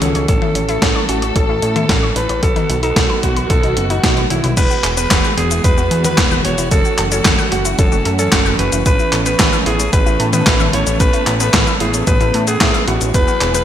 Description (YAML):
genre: italo disco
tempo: 112 BPM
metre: 4/4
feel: straight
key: unclear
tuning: A4 = 445 Hz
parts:
  - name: breathy alto saxophone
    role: melody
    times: 0.0-13.6 s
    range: E4 to C#5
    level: -19 LUFS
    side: equal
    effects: digital delay
  - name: dark chamber string section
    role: sustained chords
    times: 0.0-13.6 s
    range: D#3 to A4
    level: -22 LUFS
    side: right 2 dB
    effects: stereo widening
  - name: analog pluck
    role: arpeggios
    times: 0.0-13.6 s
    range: B3 to F#5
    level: -25 LUFS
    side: left 2 dB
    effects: chorus, digital delay
  - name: fat analog bass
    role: bass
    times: 0.0-13.6 s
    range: E1 to A2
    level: -20 LUFS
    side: equal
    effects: tube saturation
  - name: gated 80s digital drum machine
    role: drums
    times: 0.0-13.6 s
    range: cabasa, crash cymbal, handclaps, hi-hat, snare drum, toms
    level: -17 LUFS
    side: left 1 dB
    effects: gated reverb, gated reverb snare
  - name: electronic kick drum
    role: drums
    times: 0.3-13.2 s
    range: none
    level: -17 LUFS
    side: equal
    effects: none
room: moderate lush hall reverb, RT60 1.8 s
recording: bright 1980s-style digital production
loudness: -12 LUFS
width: side -10 dB against mid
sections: 0.0-4.6 A section; 4.6-13.6 B section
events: drum fill 4.3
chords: 0.3 A; 2.4 B; 4.6 Eadd9; 6.7 F#m7; 8.9 Aadd9